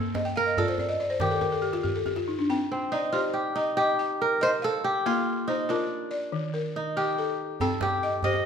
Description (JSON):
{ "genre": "west african traditional, West African string and xylophone music", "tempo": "94 BPM (dotted quarters)", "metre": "12/8", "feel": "straight", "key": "C dorian", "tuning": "A4 = 440 Hz", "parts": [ { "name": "kora", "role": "melody", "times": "0.0-8.5 s", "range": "C4 to Eb5", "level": "-27 LUFS", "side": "right 1 dB", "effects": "none" }, { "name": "balafon", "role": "arpeggios", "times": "0.0-8.5 s", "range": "Eb3 to G5", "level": "-28 LUFS", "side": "left 2 dB", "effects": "none" }, { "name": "djembe", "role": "percussion", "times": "0.1-2.4, 7.6-8.4 s", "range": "none", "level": "-32 LUFS", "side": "right 3 dB", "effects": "none" } ], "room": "wet recital hall reverb, RT60 1.7 s", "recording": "minimal, uncompressed stereo recording", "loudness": "-24 LUFS", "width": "side -7 dB against mid", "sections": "0.0-2.5 A section; 2.5-8.5 B section", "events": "balafon fill 0.1-2.5; kora solo 2.5-8.5", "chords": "0.0 Bb5; 1.2 Eb; 2.5 Cm; 5.0 Bb; 6.3 Eb; 7.6 Cm" }